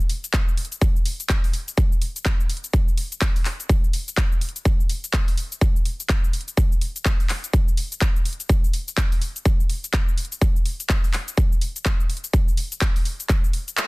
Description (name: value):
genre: house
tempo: 125 BPM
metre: 4/4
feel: swing 61% on 16ths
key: none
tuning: none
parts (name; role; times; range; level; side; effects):
- big-room dance drum kit; drums; 0.0-13.9 s; handclaps, hi-hat, shaker; -28 LUFS; left 1 dB; overdrive, studio reverb
- electronic kick drum; drums; 0.3-13.4 s; none; -19 LUFS; equal; overdrive, studio reverb
room: little or no reverb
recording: dense, heavily limited modern master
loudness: -20 LUFS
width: side -25 dB against mid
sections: 0.0-13.9 A section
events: none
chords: none